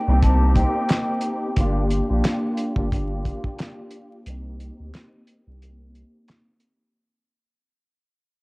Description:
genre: hip hop, boom-bap hip-hop.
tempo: 89 BPM.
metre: 4/4.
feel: swing 58% on 16ths.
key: unclear.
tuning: A4 = 440 Hz.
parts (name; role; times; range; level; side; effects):
breathy jazz flute; melody; 0.0-1.5 s; G5 to A5; -28 LUFS; left 1 dB; high-pass filter, low-pass filter, cassette tape, tape echo.
clear studio string section; accompaniment; 0.1-6.9 s; Bb3 to G4; -26 LUFS; equal; high-pass filter, low-pass filter, cassette tape.
warm sub bass; bass; 0.1-6.0 s; G1 to D2; -21 LUFS; equal; none.
cloth-damped thuddy drum kit; drums; 0.2-6.8 s; handclaps, hi-hat, kick drum, snare drum; -23 LUFS; equal; cassette tape.
room: studio reverb.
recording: home recording on cassette, vinyl crackle.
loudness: -19 LUFS.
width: side -26 dB against mid.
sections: 0.0-7.0 A section.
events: fade-out 0.0-7.0; filter sweep 0.0-7.0; break 1.6-7.0.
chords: 0.0 Cm7; 1.6 Gm7; 4.3 Cm7.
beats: 0.22 0.89 | 1.56 2.24 2.91 3.59 | 4.26 4.94 5.61 6.28.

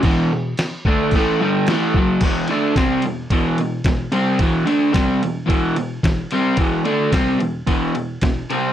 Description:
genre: garage rock duo or trio.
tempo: 110 BPM.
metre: 4/4.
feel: straight.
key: E minor.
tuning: A4 = 438 Hz.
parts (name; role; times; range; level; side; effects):
crunchy overdriven guitar; riff; 0.0-8.7 s; E2 to D4; -17 LUFS; equal; none.
lo-fi sampler-style drum kit; drums; 0.0-8.6 s; crash cymbal, kick drum, ride cymbal, snare drum; -21 LUFS; equal; none.
room: moderate small room reverb, RT60 0.5 s.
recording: cassette tape.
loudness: -16 LUFS.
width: side -10 dB against mid.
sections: 0.0-2.2 A section; 2.2-8.7 B section.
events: none.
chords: 0.0 Em.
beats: | 0.04 0.58 1.12 1.67 | 2.21 2.76 3.30 3.85 | 4.40 4.94 5.49 6.04 | 6.58 7.13 7.68 8.23.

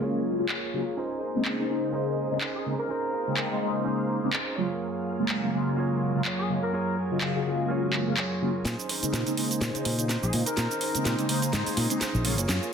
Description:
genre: filtered disco house.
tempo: 125 BPM.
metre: 4/4.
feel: swing 56% on 16ths.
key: Bb minor.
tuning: A4 = 440 Hz.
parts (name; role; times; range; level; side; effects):
mellow synth brass; accompaniment; 0.0-12.3 s; Db3 to C5; -28 LUFS; left 1 dB; chorus, phaser, low-pass filter.
string machine, full ensemble; sustained chords; 0.0-12.7 s; Gb3 to Bb5; -34 LUFS; equal; ensemble chorus, vintage 12-bit sampler grit, low-pass filter.
direct-recorded clean electric guitar; riff; 0.0-12.7 s; Bb3 to Db5; -35 LUFS; right 4 dB; low-pass filter.
house drum kit; drums; 0.5-12.7 s; cabasa, handclaps, hi-hat, snare drum; -30 LUFS; right 1 dB; low-pass filter on snare, low-pass filter on hats, low-pass filter on perc.
clear horn section; melody; 2.5-3.5, 6.4-7.0, 10.2-11.1 s; Ab4 to Bb4; -33 LUFS; left 1 dB; low-pass filter.
fingered electric bass; bass; 8.7-12.6 s; Gb1 to Bb2; -28 LUFS; equal; low-pass filter.
room: moderate plate reverb, RT60 1.0 s.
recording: dense, heavily limited modern master.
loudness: -25 LUFS.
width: side -7 dB against mid.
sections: 0.0-8.7 A section; 8.7-12.7 B section.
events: filter sweep 0.0-8.7, 8.7-12.7; build-up 8.7-12.7; drum fill 8.7-12.7.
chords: 0.0 Gbmaj9; 1.0 Bbm11; 4.6 Gbmaj9; 8.7 Bbm11.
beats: 0.01 0.49 | 0.97 1.45 1.93 2.41 | 2.89 3.37 3.85 4.33 | 4.81 5.29 5.77 6.25 | 6.73 7.21 7.69 8.17 | 8.65 9.13 9.61 10.09 | 10.57 11.05 11.53 12.01 | 12.49.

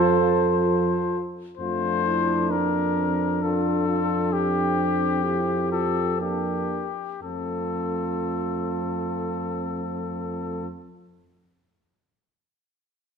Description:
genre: classical, brass quintet.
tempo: 58-67 BPM.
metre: 3/4.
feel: rubato.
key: F major.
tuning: A4 = 445 Hz.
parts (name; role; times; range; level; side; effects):
warm trumpet; melody; 0.0-10.7 s; G4 to C5; -28 LUFS; left 10 dB; none.
mellow flugelhorn; second line; 0.0-10.7 s; D4 to A4; -29 LUFS; right 8 dB; none.
mellow French horn; accompaniment; 0.0-10.7 s; A3 to G4; -30 LUFS; left 4 dB; none.
warm trombone; accompaniment; 0.0-10.7 s; F3 to F4; -32 LUFS; right 1 dB; none.
mellow tuba; bass; 0.0-10.7 s; F2; -28 LUFS; right 3 dB; none.
room: wet recital hall reverb, RT60 1.4 s.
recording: minimal, uncompressed stereo recording.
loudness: -22 LUFS.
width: side -6 dB against mid.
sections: 0.0-1.6 A section; 1.6-7.2 B section; 7.2-10.2 C section.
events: slowing down 0.2-7.2.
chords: 0.0 F; 1.6 Bb/F; 4.3 C7/F; 7.2 F.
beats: 0.65 | 1.58 2.50 3.42 | 4.32 5.24 6.20 | 7.22 8.22 9.23.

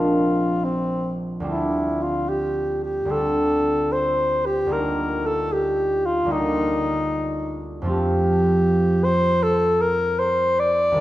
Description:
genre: classical, impressionist duo for alto saxophone and harp.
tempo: 76 BPM.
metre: 4/4.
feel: uneven beats, rubato.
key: unclear.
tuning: A4 = 440 Hz.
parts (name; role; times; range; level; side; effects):
clear alto saxophone; melody; 0.0-11.0 s; C4 to D5; -21 LUFS; left 1 dB; none.
concert harp; accompaniment; 0.0-11.0 s; Bb1 to F4; -23 LUFS; right 1 dB; none.
room: wet recital hall reverb, RT60 1.3 s.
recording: none.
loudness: -19 LUFS.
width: side -15 dB against mid.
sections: 0.0-11.0 A section.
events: none.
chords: 0.0 Bb9; 1.5 Dm7; 4.7 Ebadd9/D; 7.9 Fadd9.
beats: 0.66 | 1.48 2.30 3.12 3.93 | 4.74 5.54 6.32 7.11 | 7.90 8.67 9.43 10.20 | 10.98.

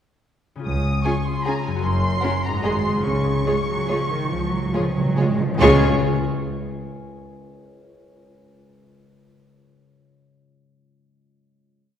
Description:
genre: classical, orchestral ballroom waltz.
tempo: 133-164 BPM.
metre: 3/4.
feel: rubato.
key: Db major.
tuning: A4 = 440 Hz.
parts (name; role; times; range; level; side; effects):
concert harp; arpeggios; 0.6-5.8 s; Gb2 to F5; -26 LUFS; left 4 dB; none.
warm symphonic violin section; melody; 0.7-5.8 s; Ab5 to Eb6; -28 LUFS; left 1 dB; none.
rich chamber double bass section; bass; 0.7-5.8 s; Gb1 to Db2; -27 LUFS; right 1 dB; none.
rich studio cello section; bass; 0.7-5.8 s; Db2 to Ab3; -26 LUFS; right 1 dB; none.
timpani; percussion; 0.7-5.8 s; Db3; -28 LUFS; right 2 dB; none.
rich chamber violin section; second line; 1.0-5.8 s; Ab4 to Ab5; -27 LUFS; equal; none.
rich studio viola section; accompaniment; 1.1-5.8 s; Ab3 to Gb4; -25 LUFS; right 2 dB; none.
room: wet scoring stage reverb, RT60 1.9 s.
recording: heard from further back in the room.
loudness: -19 LUFS.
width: side -9 dB against mid.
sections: 0.7-5.6 A section; 5.6-6.9 final chord.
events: timpani fill 3.1-5.6.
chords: 0.7 Db; 1.9 Gb; 2.7 Ab7; 3.1 Db.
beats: | 0.66 1.06 1.47 | 1.85 2.25 2.66 | 3.06 3.47 3.90 | 4.31 4.73 5.18 | 5.61.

